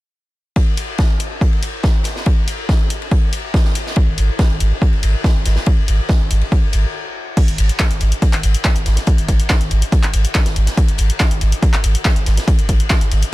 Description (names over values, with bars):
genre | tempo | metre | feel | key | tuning
driving peak-time techno | 141 BPM | 4/4 | straight | unclear | A4 = 440 Hz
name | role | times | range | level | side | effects
electronic kick drum | drums | 0.6-13.0 s | none | -15 LUFS | equal | overdrive
oversized low-tuned drum kit | drums | 0.6-13.3 s | ride cymbal, snare drum | -26 LUFS | left 2 dB | sidechain pumping on cymbals, high-pass filter on cymbals, high-pass filter on snare, high-pass filter on room
punchy analog drum machine | drums | 0.8-13.3 s | crash cymbal, handclaps, hi-hat | -22 LUFS | left 1 dB | overdrive, sidechain pumping on hats, sidechain pumping on cymbals
warm sub bass | bass | 4.1-13.2 s | G#1 | -16 LUFS | equal | overdrive, sidechain pumping, low-pass filter
room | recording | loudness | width
little or no reverb | none | -14 LUFS | side -18 dB against mid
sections
0.6-7.4 A section; 7.4-13.3 B section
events
stop 6.9-7.4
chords
none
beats
| 0.56 0.99 1.41 1.84 | 2.26 2.69 3.12 3.54 | 3.97 4.39 4.82 5.24 | 5.67 6.09 6.52 6.95 | 7.37 7.80 8.22 8.65 | 9.07 9.50 9.92 10.35 | 10.78 11.20 11.63 12.05 | 12.48 12.90